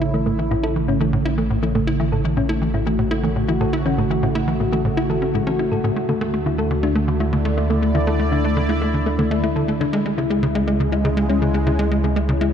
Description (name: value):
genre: ambient, sequencer-driven space music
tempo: 121 BPM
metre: 4/4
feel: straight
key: A major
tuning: A4 = 441 Hz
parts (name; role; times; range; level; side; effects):
- sweeping resonant pad; sustained chords; 0.0-12.5 s; C#3 to D5; -22 LUFS; right 1 dB; chorus
- tight sequencer bass; riff; 0.0-12.5 s; A2 to E4; -23 LUFS; equal; ping-pong delay
- warm sub bass; bass; 0.0-12.5 s; A1 to D2; -24 LUFS; equal; none
- thumb-piano-like synth pluck; arpeggios; 0.1-12.5 s; E3 to A4; -24 LUFS; moving between left 5 dB and right 1 dB; chorus, auto-pan, ping-pong delay
room: moderate plate reverb, RT60 3.7 s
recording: dreamy mix soaked in reverb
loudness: -17 LUFS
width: side -8 dB against mid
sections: 0.0-12.5 A section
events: none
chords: 0.0 A; 6.0 Dsus2; 9.9 C#m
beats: | 0.01 0.51 1.00 1.50 | 2.00 2.49 2.99 3.48 | 3.98 4.48 4.97 5.47 | 5.96 6.46 6.96 7.45 | 7.95 8.44 8.94 9.43 | 9.93 10.43 10.92 11.42 | 11.91 12.41